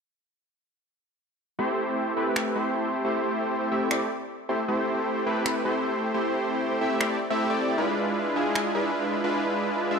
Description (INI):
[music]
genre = future bass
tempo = 155 BPM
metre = 4/4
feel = swing 54% on 16ths, half-time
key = A minor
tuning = A4 = 440 Hz
[part]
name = supersaw chords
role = riff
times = 1.6-10.0 s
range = G#3 to E5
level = -24 LUFS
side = equal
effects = low-pass filter, ping-pong delay
[part]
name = electronic finger snaps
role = drums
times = 2.4-8.6 s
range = none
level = -30 LUFS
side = equal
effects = none
[sound]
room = moderate lush hall reverb, RT60 1.7 s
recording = none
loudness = -24 LUFS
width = side -5 dB against mid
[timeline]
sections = 1.6-10.0 A section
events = none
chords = 1.6 Am7; 7.8 E7b9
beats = | 1.59 1.97 2.36 2.75 | 3.13 3.52 3.91 4.30 | 4.68 5.07 5.46 5.84 | 6.23 6.62 7.01 7.39 | 7.78 8.17 8.55 8.94 | 9.33 9.72